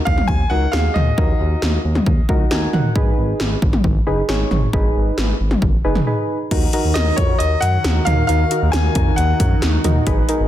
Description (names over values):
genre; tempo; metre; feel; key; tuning
synth-pop; 135 BPM; 4/4; straight; Eb minor; A4 = 440 Hz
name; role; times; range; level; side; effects
soft electric-piano-like synth keys; accompaniment; 0.0-10.5 s; Eb4 to Ab5; -23 LUFS; equal; chorus
bright grand piano; melody; 0.1-1.8, 6.9-9.8 s; Db5 to Ab5; -22 LUFS; left 2 dB; tape echo
smooth synth bass; bass; 0.1-10.5 s; Gb1 to Gb2; -19 LUFS; equal; none
80s electronic pad drums; drums; 0.1-10.4 s; crash cymbal, hi-hat, kick drum, snare drum, toms; -19 LUFS; equal; gated reverb on snare and toms
chorused pulse-width pad; sustained chords; 6.7-10.5 s; Eb3 to Bb4; -24 LUFS; right 1 dB; none
room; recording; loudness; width
light reverb, digital ambience; dense, heavily limited modern master; -15 LUFS; side -12 dB against mid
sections
0.0-6.5 A section; 6.5-10.5 B section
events
synth keys fill 2.3-3.0; break 6.1-6.5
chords
0.0 Ebm; 3.0 Abm; 6.5 Ebm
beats
0.29 0.73 | 1.18 1.62 2.07 2.51 | 2.96 3.40 3.85 4.29 | 4.73 5.18 5.62 6.07 | 6.51 6.96 7.40 7.84 | 8.29 8.73 9.18 9.62 | 10.07